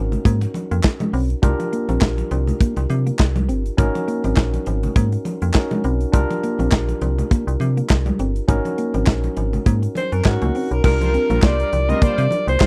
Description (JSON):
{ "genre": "early-eighties boogie funk", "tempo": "102 BPM", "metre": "4/4", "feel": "swing 56% on 16ths", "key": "unclear", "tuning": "A4 = 441 Hz", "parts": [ { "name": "barky tine electric piano", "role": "accompaniment", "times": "0.0-12.7 s", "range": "Db4 to Bb4", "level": "-28 LUFS", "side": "equal", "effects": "none" }, { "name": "semi-hollow electric guitar", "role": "riff", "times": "0.0-12.7 s", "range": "G3 to C4", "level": "-28 LUFS", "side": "equal", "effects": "analog chorus" }, { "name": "metallic FM bass", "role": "bass", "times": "0.0-12.7 s", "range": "G1 to C3", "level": "-23 LUFS", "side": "equal", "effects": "none" }, { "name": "modern studio drum kit", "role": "drums", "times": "0.1-12.7 s", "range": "crash cymbal, handclaps, hi-hat, kick drum, snare drum", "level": "-18 LUFS", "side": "equal", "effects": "none" }, { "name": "congas", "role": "percussion", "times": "0.1-12.7 s", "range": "none", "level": "-31 LUFS", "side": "equal", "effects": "none" }, { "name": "breathy alto saxophone", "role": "melody", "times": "10.0-12.7 s", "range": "Gb4 to Eb5", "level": "-23 LUFS", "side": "equal", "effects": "none" }, { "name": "analog synth brass", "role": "second line", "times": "11.0-12.7 s", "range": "G3 to C5", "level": "-31 LUFS", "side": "equal", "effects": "chorus, tape echo" } ], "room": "little or no reverb", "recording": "dry, close 1970s-style studio recording", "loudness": "-19 LUFS", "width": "mono", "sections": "0.0-10.8 A section; 10.8-12.7 B section", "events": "none", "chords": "0.0 Ab9sus4; 1.4 C9sus4; 3.8 Ab9sus4; 6.1 C9sus4; 8.5 Ab9sus4; 10.8 C9sus4", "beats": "0.25 0.84 | 1.43 2.02 2.60 3.19 | 3.78 4.37 4.96 5.55 | 6.13 6.72 7.31 7.90 | 8.49 9.07 9.66 10.25 | 10.84 11.43 12.02 12.61" }